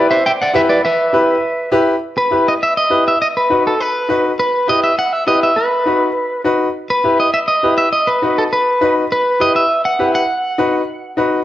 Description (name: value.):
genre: latin.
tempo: 203 BPM.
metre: 4/4.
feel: straight.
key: E harmonic minor.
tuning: A4 = 440 Hz.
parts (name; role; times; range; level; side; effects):
electric guitar at the edge of break-up; melody; 0.0-11.3 s; A4 to G5; -14 LUFS; equal; spring reverb, slapback echo.
clear upright piano; accompaniment; 0.0-11.4 s; D#4 to B4; -16 LUFS; left 1 dB; none.
room: moderate large studio reverb, RT60 0.8 s.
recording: none.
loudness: -13 LUFS.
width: side -13 dB against mid.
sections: 0.0-2.0 A section; 2.0-11.4 B section.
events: none.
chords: 0.0 Em; 3.2 B; 4.4 Em; 5.6 B; 6.8 Em; 7.9 B; 9.1 Em; 10.3 B.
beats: 0.25 0.55 | 0.84 1.14 1.43 1.73 | 2.02 2.32 2.61 2.91 | 3.21 3.50 3.80 4.09 | 4.39 4.68 4.98 5.27 | 5.57 5.87 6.16 6.46 | 6.75 7.05 7.34 7.64 | 7.93 8.23 8.52 8.82 | 9.11 9.41 9.70 10.00 | 10.29 10.59 10.88 11.18.